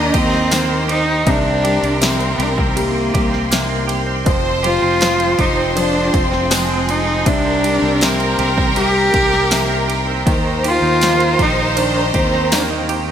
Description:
pop ballad; 80 BPM; 4/4; straight; A4 = 440 Hz
rich cello; melody; 0.0-12.9 s; Bb3 to G4; -18 LUFS; equal
bright symphonic violin section; second line; 0.0-13.1 s; Ab4 to Eb5; -22 LUFS; right 1 dB
clear concert grand piano; accompaniment; 0.0-13.1 s; C3 to Bb3; -24 LUFS; left 4 dB
clear studio string section; sustained chords; 0.0-13.1 s; Eb3 to C6; -24 LUFS; left 2 dB
direct-recorded clean electric guitar; arpeggios; 0.0-13.1 s; F2 to G4; -25 LUFS; right 7 dB; analog chorus
fretless electric bass; bass; 0.0-13.1 s; F1 to Eb2; -22 LUFS; equal
deep house drum kit; drums; 0.1-13.1 s; kick drum, ride cymbal, snare drum; -21 LUFS; equal; gated reverb
tambourine; percussion; 0.5-12.7 s; -26 LUFS; left 8 dB
moderate lush hall reverb, RT60 2.6 s; bright 1980s-style digital production; -13 LUFS; side -9 dB against mid
0.0-13.1 A section
0.0 Eb; 1.3 Cm7; 4.3 Fmadd9; 7.3 Cm7; 10.3 Eb
0.52 | 1.27 2.02 2.77 3.52 | 4.27 5.02 5.77 6.52 | 7.27 8.02 8.77 9.52 | 10.27 11.02 11.77 12.52

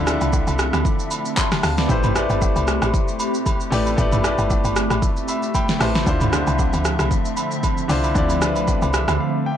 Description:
amapiano; 115 BPM; 4/4; swing 55% on 16ths; A4 = 440 Hz
clear baby grand piano; accompaniment; 0.0-9.6 s; D3 to C6; -24 LUFS; left 2 dB
hollow soft pad; sustained chords; 0.0-9.6 s; D3 to E5; -25 LUFS; equal; ensemble chorus
woody log drum bass; bass; 0.0-9.2 s; G1 to D2; -23 LUFS; equal
deep house drum kit; drums; 0.1-9.2 s; handclaps, hi-hat, kick drum, rim click, shaker, snare drum, toms; -21 LUFS; equal; vintage 12-bit sampler grit
agogo bells and woodblock; percussion; 0.2-9.2 s; -29 LUFS; right 3 dB
little or no reverb; dry, gritty hardware recording; -17 LUFS; side -10 dB against mid
0.0-9.6 A section
grand piano fill 5.0-6.1, 8.7-9.6; break 9.2-9.6
0.0 Dm9; 1.9 Am9; 6.1 Dm9
0.33 0.85 1.37 | 1.90 2.42 2.94 3.46 | 3.98 4.50 5.03 5.55 | 6.07 6.59 7.11 7.63 | 8.15 8.68 9.20

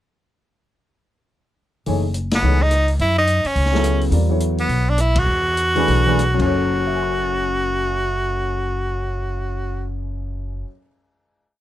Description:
modal jazz; 181-213 BPM; 4/4; swing 61% on 8ths; F# minor; A4 = 440 Hz
clear upright piano; accompaniment; 1.9-10.9 s; F#2 to E7; -24 LUFS; left 2 dB
upright bass; bass; 1.9-10.6 s; F#1 to F#2; -21 LUFS; equal
open jazz drum kit; drums; 1.9-6.5 s; crash cymbal, hi-hat, kick drum, ride cymbal, rim click, snare drum; -28 LUFS; left 2 dB
edgy tenor saxophone; melody; 2.4-9.9 s; B3 to F#4; -20 LUFS; equal
little or no reverb; close, detailed microphones; -17 LUFS; side -13 dB against mid
1.9-6.5 A section; 6.5-9.2 final chord
band accent 2.3, 5.1; slowing down 4.1-6.5
1.9 F#13sus4; 4.1 E13sus4; 6.4 F#m
| 1.87 2.15 2.43 2.71 | 2.99 3.27 3.56 3.84 | 4.12 4.40 4.69 4.98 | 5.27 5.57 5.88 6.20 | 6.52 6.85 7.18 7.51 | 7.84 8.17 8.50 8.83

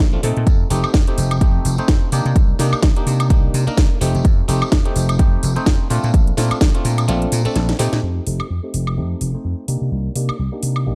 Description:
filtered disco house; 127 BPM; 4/4; swing 56% on 16ths; F mixolydian; A4 = 439 Hz
vintage slap bass; bass; 0.0-10.9 s; F1 to C3; -22 LUFS; equal; tube saturation, sidechain pumping, low-pass filter
house drum kit; drums; 0.0-10.8 s; hi-hat, snare drum, woodblock; -26 LUFS; equal; sidechain pumping on hats, studio reverb, sidechain pumping on perc
clav; accompaniment; 0.1-10.9 s; A3 to C5; -27 LUFS; equal; phaser, sidechain pumping, low-pass filter
electronic kick drum; drums; 0.5-6.7 s; -17 LUFS; equal; studio reverb
tambourine; percussion; 0.5-8.0 s; -38 LUFS; equal; sidechain pumping on perc, low-pass filter on perc
digital ambience; dark, warm production; -17 LUFS; mono
0.0-8.0 A section; 8.0-10.9 B section
kick drops out 7.1-8.0; drum fill 7.6-8.0; filter sweep 8.0-10.9
0.5 F7; 2.1 Cm9; 4.0 F7; 5.9 Bbmaj7; 8.0 F7; 9.7 Cm9
0.00 | 0.47 0.94 1.42 1.89 | 2.36 2.83 3.31 3.78 | 4.25 4.72 5.20 5.67 | 6.14 6.61 7.08 7.56 | 8.03 8.50 8.97 9.45 | 9.92 10.39 10.86

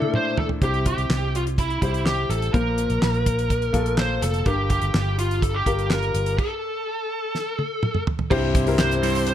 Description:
piano-driven pop; 125 BPM; 4/4; straight; A4 = 440 Hz
bluesy overdriven lead guitar; melody; 0.0-9.3 s; E4 to C5; -25 LUFS; equal; distortion
clear grand piano; accompaniment; 0.0-9.3 s; G2 to C5; -26 LUFS; left 3 dB
damped 70s drum kit; drums; 0.0-9.3 s; crash cymbal, handclaps, hi-hat, kick drum, snare drum, toms; -24 LUFS; equal
vintage muted fingered electric bass; bass; 0.6-9.3 s; F1 to C2; -25 LUFS; right 1 dB
direct-recorded clean electric guitar; riff; 8.3-9.3 s; C3 to C5; -28 LUFS; right 7 dB; phaser
light reverb, studio ambience; -20 LUFS; side -10 dB against mid
0.0-8.3 A section; 8.3-9.3 B section
drum fill 0.0-0.6, 7.3-8.3; stop 6.4-8.3
0.0 Bbmaj7; 0.6 C; 2.5 Bbsus2; 4.5 Gm7; 6.4 N.C.; 8.3 C
0.14 | 0.62 1.10 1.58 2.06 | 2.54 3.02 3.50 3.98 | 4.47 4.95 5.43 5.91 | 6.39 6.87 7.35 7.83 | 8.31 8.79 9.27

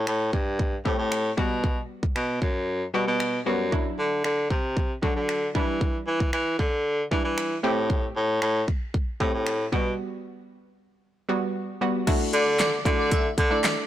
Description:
dance-pop; 115 BPM; 4/4; straight; G major; A4 = 440 Hz
hollow square pluck; accompaniment; 0.0-13.9 s; F#3 to A4; -29 LUFS; equal; chorus, sidechain pumping
breathy baritone saxophone; bass; 0.0-13.6 s; F#2 to E3; -25 LUFS; equal; sidechain pumping
pop drum kit; drums; 0.1-13.8 s; crash cymbal, finger snaps, handclaps, hi-hat, kick drum, snare drum; -27 LUFS; equal; soft clipping on snare
airy dreamy lead; melody; 12.3-13.7 s; D5 to E5; -29 LUFS; equal; chorus
light reverb; blown-out, overdriven recording, overdrive; -23 LUFS; side -12 dB against mid
0.0-12.1 A section; 12.1-13.9 B section
break 10.0-12.1; drop 12.1-13.9
0.0 Am7; 1.4 Gmaj7; 3.7 Dadd9; 5.6 Em7; 7.6 Am7; 9.7 Gmaj7/B; 12.1 Dadd9
0.07 0.59 1.12 | 1.64 2.16 2.68 3.20 | 3.73 4.25 4.77 5.29 | 5.81 6.33 6.86 7.38 | 7.90 8.42 8.94 9.46 | 9.99 10.51 11.03 11.55 | 12.07 12.60 13.12 13.64

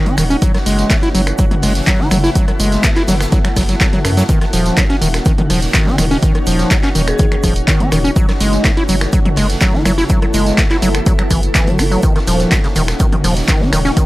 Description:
acid house; 124 BPM; 4/4; straight; A4 = 445 Hz
warm analog pad; sustained chords; 0.0-14.1 s; Eb3 to Gb4; -25 LUFS; equal; wide subtle chorus, sidechain pumping
acid bass, square; riff; 0.0-14.1 s; Gb2 to Gb4; -17 LUFS; equal; overdrive
granular cloud pad; texture; 0.0-14.1 s; Eb4 to Gb5; -24 LUFS; equal; built-in reverb, sidechain pumping
oversized low-tuned drum kit; drums; 0.1-14.1 s; hi-hat, shaker, snare drum; -30 LUFS; right 1 dB; high-pass filter on hats, high-pass filter on snare, high-pass filter on perc, high-pass filter on room
punchy analog drum machine; drums; 0.1-14.1 s; finger snaps, handclaps, hi-hat, rim click, tambourine, toms; -19 LUFS; equal
saturated sub bass; bass; 0.2-13.9 s; Eb1 to Gb2; -18 LUFS; equal; sidechain pumping
electronic kick drum; drums; 0.4-14.1 s; -14 LUFS; equal
vibraphone with medium hard mallets; melody; 7.1-7.4 s; Ab4; -25 LUFS; left 2 dB; analog delay
little or no reverb; -11 LUFS; side -18 dB against mid
0.0-14.1 A section
0.4 Gbm7; 4.3 Ebm7; 8.2 Gbm7; 12.0 Ebm7
| 0.42 0.90 1.39 1.87 | 2.35 2.84 3.32 3.81 | 4.29 4.78 5.26 5.74 | 6.23 6.71 7.19 7.68 | 8.16 8.65 9.13 9.61 | 10.10 10.58 11.06 11.55 | 12.03 12.52 13.00 13.48 | 13.97

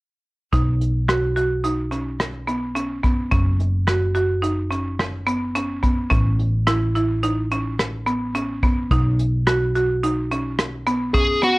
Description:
progressive instrumental, band music in an uneven meter; 107 BPM; 5/4; straight; B mixolydian; A4 = 440 Hz
buzzing marimba with hard mallets; arpeggios; 0.5-11.6 s; B3 to F#4; -23 LUFS; right 1 dB
hollow-body short-scale picked electric bass; bass; 0.5-11.6 s; F#1 to B1; -23 LUFS; equal
soft brush drum kit; drums; 0.5-11.6 s; hi-hat, kick drum, rim click; -22 LUFS; equal
dark smooth lead guitar; melody; 11.1-11.6 s; F#4 to G#4; -16 LUFS; equal; overdrive
light reverb; worn, warbling old tape, cassette tape, warbly pitch drift; -19 LUFS; side -22 dB against mid
0.5-11.6 A section
0.5 Badd9; 3.3 F#5; 6.1 A; 8.9 Badd9
| 0.53 1.09 1.65 2.21 2.76 | 3.32 3.88 4.44 5.00 5.56 | 6.12 6.68 7.24 7.79 8.35 | 8.91 9.47 10.03 10.59 11.15

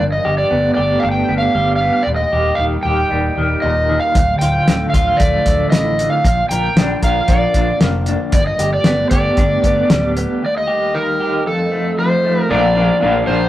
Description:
psychedelic rock; 115 BPM; 4/4; straight; A4 = 440 Hz
overdriven slide guitar; melody; 0.0-13.5 s; A4 to G5; -17 LUFS; equal
soft string machine; sustained chords; 0.0-13.5 s; D3 to F5; -28 LUFS; right 2 dB; ensemble chorus
electric guitar through a small old amp; riff; 0.0-13.5 s; D2 to Bb4; -18 LUFS; equal; tremolo
picked electric bass; bass; 0.0-13.5 s; D1 to Bb1; -21 LUFS; equal
cloth-damped thuddy drum kit; drums; 4.2-10.3 s; hi-hat, kick drum, snare drum; -15 LUFS; equal
moderate studio reverb, RT60 0.5 s; rough rehearsal-room recording; -13 LUFS; side -14 dB against mid
0.0-12.5 A section
break 10.4-12.5
0.0 Gadd9; 2.1 Eb; 4.2 Dm; 6.2 Bb; 8.3 Gadd9; 10.4 Eb; 11.5 F7; 12.5 Bb6
| 0.00 0.52 1.04 1.56 | 2.08 2.60 3.12 3.64 | 4.16 4.68 5.20 5.73 | 6.25 6.77 7.29 7.82 | 8.34 8.86 9.38 9.90 | 10.43 10.95 11.47 11.99 | 12.51 13.03

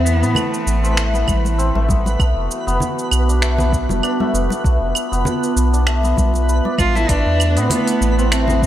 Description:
organic downtempo; 98 BPM; 4/4; swing 55% on 16ths; A4 = 442 Hz
rich cello; melody; 0.0-1.6, 6.8-8.7 s; A3 to F4; -22 LUFS; right 1 dB; digital delay
warbly tape-like pad; sustained chords; 0.0-8.7 s; E3 to A5; -24 LUFS; right 3 dB; chorus, built-in reverb, sidechain pumping
santur; arpeggios; 0.0-8.7 s; A3 to D5; -23 LUFS; left 4 dB; digital delay
round analog bass; bass; 0.0-8.7 s; F1 to A2; -17 LUFS; equal
twinkling granular texture; texture; 0.0-8.7 s; B4; -30 LUFS; right 3 dB; built-in reverb
organic electronic drum kit; drums; 0.1-8.7 s; cabasa, claves, finger snaps, hi-hat; -24 LUFS; right 3 dB; small room ambience
congas; percussion; 0.3-8.6 s; -25 LUFS; left 2 dB
electronic kick drum; drums; 1.3-8.7 s; -19 LUFS; equal; small room ambience
light reverb, digital ambience; -15 LUFS; side -12 dB against mid
0.0-8.7 A section
0.0 Amadd9; 2.2 Bm7b5; 7.1 Amadd9
0.36 0.97 1.58 | 2.20 2.81 3.42 4.03 | 4.64 5.26 5.87 6.48 | 7.09 7.71 8.32

